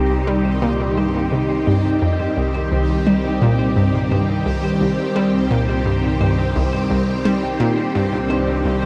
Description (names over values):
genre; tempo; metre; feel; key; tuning
ambient, sequencer-driven space music; 86 BPM; 4/4; straight; C minor; A4 = 440 Hz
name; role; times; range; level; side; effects
phased string machine; sustained chords; 0.0-8.9 s; Eb3 to G4; -22 LUFS; equal; ensemble chorus, phaser
analog pluck; riff; 0.0-8.9 s; C2 to G3; -22 LUFS; equal; chorus, tape echo
fat analog bass; bass; 0.0-8.9 s; C2; -28 LUFS; equal; tube saturation
bubbling stepped-filter texture; texture; 0.0-8.9 s; G4; -34 LUFS; equal; chorus, built-in reverb
semi-hollow electric guitar; arpeggios; 0.1-8.9 s; C4 to G5; -38 LUFS; equal; none
room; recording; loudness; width
wet shimmer reverb, RT60 8.7 s; dark, warm production; -18 LUFS; mono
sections
0.0-8.9 A section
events
none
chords
0.0 Cm